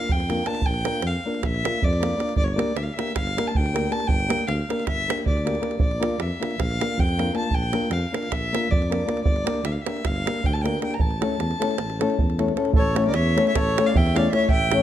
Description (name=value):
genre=balkan folk, Balkan wedding band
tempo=313 BPM (eighths)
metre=9/8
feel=straight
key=A phrygian dominant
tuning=A4 = 440 Hz
part: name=warm violin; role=melody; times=0.0-14.8 s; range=C#5 to Bb5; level=-28 LUFS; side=left 1 dB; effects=none
part: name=nylon-string guitar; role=accompaniment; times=0.0-14.8 s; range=A3 to C#5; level=-26 LUFS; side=left 3 dB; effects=none
part: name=dark tuba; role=bass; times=0.1-14.8 s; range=G1 to F2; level=-27 LUFS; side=equal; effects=none
part: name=davul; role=percussion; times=0.1-14.8 s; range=none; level=-25 LUFS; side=right 2 dB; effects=none
part: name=accordion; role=second line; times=12.8-14.8 s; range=A4 to E5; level=-28 LUFS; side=right 6 dB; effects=none
room=light reverb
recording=close, detailed microphones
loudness=-21 LUFS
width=side -11 dB against mid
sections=0.0-12.7 A section; 12.7-14.8 B section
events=none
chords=0.0 Bb; 2.4 Gm; 5.8 Bb; 9.2 Gm; 11.0 A